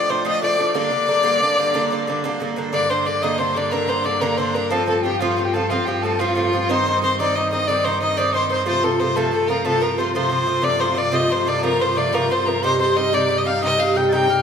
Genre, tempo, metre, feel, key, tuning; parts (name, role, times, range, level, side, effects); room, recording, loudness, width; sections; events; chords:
celtic folk, Celtic slide; 121 BPM (dotted quarters); 12/8; straight; G minor; A4 = 440 Hz
clear fiddle; melody; 0.0-14.4 s; F4 to G5; -20 LUFS; left 2 dB
tin whistle; second line; 0.0-14.4 s; F5 to A6; -26 LUFS; left 3 dB
Irish bouzouki; accompaniment; 0.0-14.4 s; G2 to G4; -21 LUFS; right 2 dB
bright cello; drone; 2.7-14.4 s; G2; -30 LUFS; right 1 dB
wet recital hall reverb, RT60 1.7 s; -17 LUFS; side -7 dB against mid
0.0-2.7 A section; 2.7-14.4 B section
0.0 Dm; 0.7 Gm; 4.7 F; 6.7 Cm; 8.7 F; 12.6 Cm